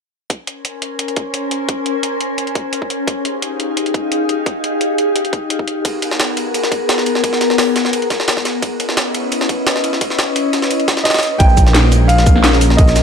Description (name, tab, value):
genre	liquid drum and bass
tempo	173 BPM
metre	4/4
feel	straight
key	Bb dorian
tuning	A4 = 440 Hz
part	glassy FM pad	sustained chords	0.7-13.0 s	Ab3 to Ab5	-18 LUFS	left 2 dB	ensemble chorus, built-in reverb, sidechain pumping
part	drum and bass drum kit	drums	0.3-13.0 s	hi-hat, shaker, snare drum	-21 LUFS	equal	none
part	electronic kick drum	drums	0.3-12.9 s	none	-15 LUFS	equal	high-pass filter on kick, high-pass filter on room
part	jungle sampler-style drum kit	drums	5.9-13.0 s	hi-hat, ride cymbal, snare drum	-19 LUFS	right 1 dB	high-pass filter on cymbals, high-pass filter on snare, high-pass filter on hats
part	clear baby grand piano	melody	11.0-13.0 s	Eb5 to G5	-17 LUFS	right 1 dB	ping-pong delay
part	dark detuned saw bass	bass	11.4-13.0 s	Bb1	-12 LUFS	right 1 dB	tube saturation
room	moderate lush hall reverb, RT60 2.5 s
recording	dark, warm production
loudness	-14 LUFS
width	side -6 dB against mid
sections	0.3-11.4 A section; 11.4-13.0 B section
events	drop 11.4-13.0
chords	0.3 Bbm9; 3.1 Fm9; 5.7 Abm9; 8.5 Dbm9; 11.4 Bbm7